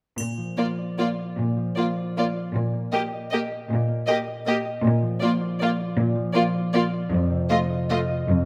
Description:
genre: classical, orchestral ballroom waltz.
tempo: 156 BPM.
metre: 3/4.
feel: uneven beats, rubato.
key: Bb major.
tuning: A4 = 440 Hz.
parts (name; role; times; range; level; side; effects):
concert harp; arpeggios; 0.2-8.5 s; F2 to G5; -30 LUFS; equal; none.
rich studio cello section; bass; 0.2-8.5 s; F2 to Bb2; -26 LUFS; equal; none.
triangle; percussion; 0.2-0.9 s; none; -40 LUFS; equal; none.
rich chamber violin section; melody; 0.6-8.0 s; D5 to Eb5; -33 LUFS; equal; none.
rich chamber violin section; second line; 0.6-8.0 s; F4 to G4; -30 LUFS; equal; none.
rich studio viola section; accompaniment; 0.6-8.0 s; A3 to Bb3; -30 LUFS; equal; none.
room: moderate scoring stage reverb, RT60 1.9 s.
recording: close, detailed microphones.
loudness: -24 LUFS.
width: mono.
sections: 0.2-8.5 A section.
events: none.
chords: 0.2 Bb; 2.6 Eb/Bb; 4.8 Bb; 7.1 F7(no3).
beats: | 0.18 0.58 0.99 | 1.38 1.77 2.18 | 2.55 2.93 3.33 | 3.71 4.08 4.47 | 4.84 5.22 5.61 | 5.98 6.35 6.74 | 7.12 7.50 7.90 | 8.28.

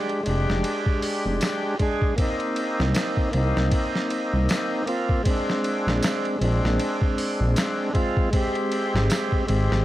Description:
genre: trip hop.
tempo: 78 BPM.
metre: 4/4.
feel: swing 57% on 16ths.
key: F dorian.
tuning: A4 = 440 Hz.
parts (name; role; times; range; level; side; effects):
bright tonewheel organ; accompaniment; 0.0-9.8 s; Ab3 to Ab4; -24 LUFS; equal; overdrive, slow rotary speaker, harmonic tremolo, tape echo.
boom bap sampler-style drum kit; drums; 0.1-9.8 s; hi-hat, kick drum, ride cymbal, snare drum; -26 LUFS; equal; studio reverb.
dark detuned saw bass; bass; 0.3-9.8 s; F1 to C2; -22 LUFS; equal; none.
tambourine; percussion; 1.4-9.3 s; none; -37 LUFS; right 2 dB; none.
room: digital ambience.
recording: dry, gritty hardware recording, transformer saturation, vinyl crackle.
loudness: -21 LUFS.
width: side -15 dB against mid.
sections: 0.0-9.8 A section.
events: none.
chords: 0.0 Fm69; 2.2 Cm7; 5.3 Bb9; 8.3 Abmaj7.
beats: 0.64 1.41 | 2.18 2.95 3.72 4.49 | 5.26 6.03 6.80 7.57 | 8.34 9.11.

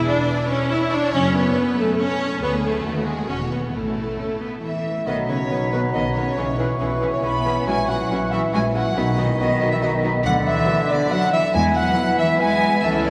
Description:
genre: cinematic, playful, whimsical film cue.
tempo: 139 BPM.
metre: 3/4.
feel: straight.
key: A major, B major from 5.1 s.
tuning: A4 = 440 Hz.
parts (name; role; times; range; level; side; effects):
rich chamber violin section; melody; 0.0-13.1 s; G#4 to B5; -32 LUFS; equal; none.
warm symphonic violin section; second line; 0.0-13.1 s; B3 to C#5; -36 LUFS; equal; none.
rich chamber viola section; accompaniment; 0.0-13.1 s; D#3 to E4; -27 LUFS; equal; none.
rich chamber cello section; bass; 0.0-13.1 s; D2 to C#4; -29 LUFS; equal; none.
rich chamber double bass section; bass; 0.0-13.1 s; E1 to E2; -29 LUFS; equal; none.
dark clarinet; second line; 4.6-13.1 s; B4 to B5; -27 LUFS; equal; none.
mellow concert flute; second line; 4.6-13.1 s; B4 to B5; -31 LUFS; equal; none.
warm oboe; second line; 5.1-13.1 s; A5 to C#6; -31 LUFS; equal; none.
warm bassoon; accompaniment; 5.1-13.1 s; D3 to F#3; -30 LUFS; equal; none.
dark French horn section; sustained chords; 5.1-13.1 s; A3 to E4; -31 LUFS; equal; none.
room: wet church reverb, RT60 3.7 s.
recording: none.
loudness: -21 LUFS.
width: mono.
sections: 0.0-5.1 A section; 5.1-13.1 B section.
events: none.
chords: 0.0 E; 1.1 F#m; 2.4 D5; 2.9 F#m69/D#; 3.3 E5; 3.7 A5; 5.1 B; 6.4 C#m7/B; 7.7 F#7/A#; 9.0 B; 10.3 Bm/D; 11.5 E.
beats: 0.27 0.70 | 1.13 1.56 1.99 | 2.42 2.85 3.29 | 3.73 4.18 4.63 | 5.07 5.51 5.94 | 6.38 6.81 7.24 | 7.68 8.11 8.55 | 8.97 9.40 9.83 | 10.26 10.68 11.11 | 11.54 11.97 12.40 | 12.83.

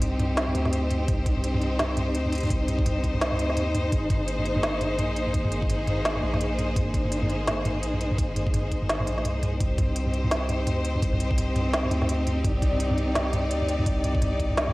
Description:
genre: half-time drum and bass.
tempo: 169 BPM.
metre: 4/4.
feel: swing 60% on 16ths, half-time.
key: C minor.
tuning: A4 = 440 Hz.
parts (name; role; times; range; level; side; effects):
clear studio string section; sustained chords; 0.0-14.7 s; Bb3 to D5; -28 LUFS; left 1 dB; sidechain pumping, cassette tape.
long sustained 808-style bass; bass; 0.0-14.7 s; Ab1 to Eb2; -29 LUFS; equal; none.
organic electronic drum kit; drums; 0.0-14.7 s; hi-hat, snare drum, toms; -28 LUFS; equal; cassette tape.
electronic kick drum; drums; 1.1-14.5 s; none; -27 LUFS; equal; overdrive, cassette tape.
room: light reverb.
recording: home recording on cassette.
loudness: -23 LUFS.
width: side -20 dB against mid.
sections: 0.0-14.7 A section.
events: none.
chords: 0.0 Cm; 3.9 Abadd9; 9.6 Cm.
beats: 0.02 0.37 0.73 | 1.08 1.44 1.79 2.15 | 2.50 2.86 3.21 3.57 | 3.92 4.28 4.63 4.99 | 5.34 5.70 6.05 6.41 | 6.76 7.12 7.47 7.83 | 8.18 8.54 8.89 9.25 | 9.60 9.96 10.31 10.67 | 11.02 11.38 11.73 12.09 | 12.44 12.80 13.15 13.51 | 13.86 14.22 14.57.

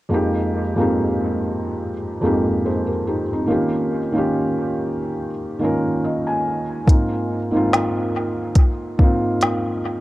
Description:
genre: lo-fi hip hop.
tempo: 71 BPM.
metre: 4/4.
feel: swing 57% on 16ths.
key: F minor.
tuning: A4 = 440 Hz.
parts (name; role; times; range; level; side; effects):
felt-muted upright piano; accompaniment; 0.1-10.0 s; F2 to Ab5; -19 LUFS; equal; cassette tape, low-pass filter, dub echo.
organic electronic drum kit; drums; 6.9-9.6 s; hi-hat, kick drum, snare drum; -16 LUFS; equal; none.
room: moderate spring reverb, RT60 2.7 s.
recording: echo-heavy mix, cassette tape.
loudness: -18 LUFS.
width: side -17 dB against mid.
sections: 0.1-10.0 A section.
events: felt piano fill 5.6-6.9.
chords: 0.1 Fm11; 3.5 Eb7; 6.9 Ab6.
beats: | 0.11 0.95 1.80 2.65 | 3.49 4.33 5.18 6.03 | 6.87 7.71 8.56 9.40.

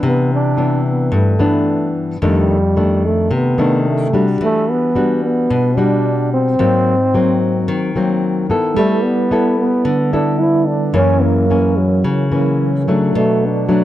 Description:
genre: bossa nova.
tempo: 110 BPM.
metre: 4/4.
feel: straight.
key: G major.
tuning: A4 = 440 Hz.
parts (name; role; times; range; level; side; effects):
nylon-string guitar; accompaniment; 0.0-13.8 s; F2 to A4; -15 LUFS; left 2 dB; none.
breathy trombone; melody; 0.1-13.8 s; F#3 to E4; -17 LUFS; right 1 dB; none.
mellow tine electric piano; accompaniment; 8.7-13.8 s; F#3 to D5; -22 LUFS; right 6 dB; medium stereo tremolo.
room: light reverb.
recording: dark, warm production.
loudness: -13 LUFS.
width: side -13 dB against mid.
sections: 0.0-13.8 A section.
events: none.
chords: 0.0 Cmaj9; 2.2 F13; 4.4 Em9; 6.6 Ab9; 8.8 G69; 11.0 F#7; 13.1 Bm7.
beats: | 0.03 0.57 1.12 1.67 | 2.21 2.76 3.30 3.85 | 4.39 4.94 5.49 6.03 | 6.58 7.13 7.67 8.22 | 8.77 9.31 9.86 10.41 | 10.96 11.51 12.05 12.60 | 13.15 13.70.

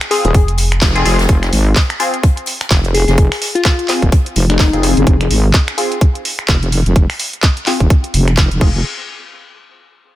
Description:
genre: bass house.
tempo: 127 BPM.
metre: 4/4.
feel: swing 58% on 16ths.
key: F minor.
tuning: A4 = 441 Hz.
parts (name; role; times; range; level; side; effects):
garage drum kit; drums; 0.0-8.7 s; crash cymbal, finger snaps, handclaps, hi-hat; -19 LUFS; equal; none.
glassy wavetable pluck; melody; 0.1-4.8 s; Eb4 to Ab4; -20 LUFS; left 4 dB; chorus, dub echo.
band-passed chord stab; stabs; 0.1-8.8 s; C4 to Ab4; -21 LUFS; left 3 dB; phaser, analog chorus, sidechain pumping, dub echo.
swinging big-band drum kit; drums; 0.1-5.0 s; hi-hat, snare drum; -28 LUFS; left 3 dB; none.
wobble bass; bass; 0.2-8.8 s; Eb1 to Ab1; -14 LUFS; equal; chorus, tube saturation, sidechain pumping.
metallic FM bass; bass; 0.3-0.8 s; F1; -15 LUFS; equal; tube saturation, sidechain pumping.
electronic kick drum; drums; 0.3-8.7 s; none; -11 LUFS; equal; none.
room: digital ambience.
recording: none.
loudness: -11 LUFS.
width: side -14 dB against mid.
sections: 0.0-1.3 A section; 1.3-8.8 B section; 8.8-10.2 C section.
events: drop 0.0-1.3; band accent 0.8; filter sweep on wobble bass 1.3-8.8; filter sweep on synth stab 1.3-8.8.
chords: 0.0 Fm; 8.8 N.C..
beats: 0.34 0.82 | 1.29 1.76 2.23 2.71 | 3.18 3.65 4.12 4.60 | 5.07 5.54 6.01 6.49 | 6.96 7.43 7.90 8.38.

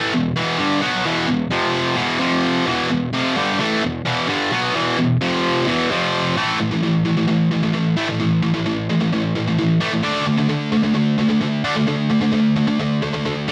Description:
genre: metal.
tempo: 130 BPM.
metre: 4/4.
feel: straight.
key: unclear.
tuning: A4 = 438 Hz.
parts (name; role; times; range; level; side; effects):
high-gain distorted guitar; solo; 0.0-13.5 s; E2 to D4; -19 LUFS; equal; distortion, slapback echo.
room: light reverb.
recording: dry, close 1970s-style studio recording.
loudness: -19 LUFS.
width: mono.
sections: 0.0-6.4 A section; 6.4-13.5 B section.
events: none.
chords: 0.0 Em; 1.5 F5; 2.0 E5; 2.2 F5; 2.7 Em; 5.2 F5; 5.7 E5; 5.9 F5; 6.4 A5; 10.0 D5.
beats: 0.36 | 0.82 1.28 1.75 2.21 | 2.67 3.13 3.59 4.05 | 4.52 4.98 5.44 5.90 | 6.36 6.82 7.28 7.74 | 8.20 8.66 9.12 9.58 | 10.04 10.50 10.96 11.42 | 11.88 12.34 12.80 13.26.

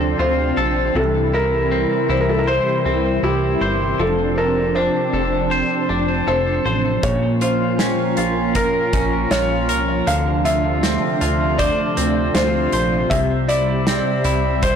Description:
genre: dream pop.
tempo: 79 BPM.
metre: 4/4.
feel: straight.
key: F major.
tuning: A4 = 440 Hz.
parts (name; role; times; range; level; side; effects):
felt-muted upright piano; melody; 0.0-14.8 s; G4 to F5; -22 LUFS; equal; digital delay.
warm analog pad; sustained chords; 0.0-14.8 s; C3 to E5; -22 LUFS; right 2 dB; chorus.
clean electric guitar; arpeggios; 0.0-14.8 s; Bb2 to C5; -22 LUFS; left 2 dB; wide subtle chorus, digital delay.
plucky analog bass; bass; 0.0-14.7 s; F1 to D2; -24 LUFS; equal; transformer saturation.
vibraphone with medium mallets; texture; 0.0-14.8 s; D4 to C6; -32 LUFS; right 6 dB; none.
loose indie drum kit; drums; 7.0-14.8 s; hi-hat, kick drum, snare drum; -24 LUFS; right 1 dB; none.
room: light reverb, small room reverb.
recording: blown-out, overdriven recording, overdrive.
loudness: -16 LUFS.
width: side -7 dB against mid.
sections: 0.0-14.8 A section.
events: none.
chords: 0.0 Dm7; 1.0 C; 4.0 F6; 7.0 Bbm; 10.1 Dm7; 13.1 C.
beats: 0.20 | 0.96 1.72 2.48 3.24 | 4.00 4.75 5.51 6.27 | 7.03 7.79 8.55 9.31 | 10.07 10.83 11.59 12.35 | 13.11 13.87 14.63.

